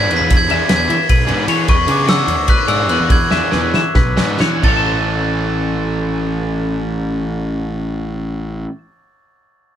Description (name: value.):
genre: math rock and midwest emo.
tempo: 258-305 BPM (eighths).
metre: 7/8.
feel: straight.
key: A major.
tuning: A4 = 440 Hz.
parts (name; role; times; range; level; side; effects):
glockenspiel with soft plastic mallets; melody; 0.0-8.7 s; C#6 to B6; -19 LUFS; right 1 dB; none.
twelve-string electric guitar; arpeggios; 0.0-8.8 s; F#4 to A5; -22 LUFS; left 8 dB; none.
biting overdriven guitar; riff; 0.0-8.7 s; E3 to A4; -22 LUFS; right 2 dB; none.
fuzz picked electric bass; bass; 0.0-8.6 s; A1 to E3; -20 LUFS; equal; overdrive.
loose indie drum kit; drums; 0.1-4.7 s; crash cymbal, kick drum, ride cymbal, snare drum; -17 LUFS; equal; none.
room: moderate studio ambience, RT60 0.5 s.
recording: band playing live in one room.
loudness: -14 LUFS.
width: side -10 dB against mid.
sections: 0.0-4.6 A section; 4.6-7.9 B section.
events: slowing down 1.7-4.6; drum fill 3.3-4.6.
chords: 0.0 E7; 4.6 A.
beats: 0.12 | 0.32 0.51 0.71 0.91 1.10 1.30 1.50 | 1.69 1.89 2.09 2.29 2.49 2.69 2.90 | 3.10 3.31 3.52 3.74 3.96 4.18 4.40 | 4.63 4.87 5.10 5.33 5.56 5.79 6.03 | 6.26 6.49 6.72 6.96 7.19 7.42 7.65.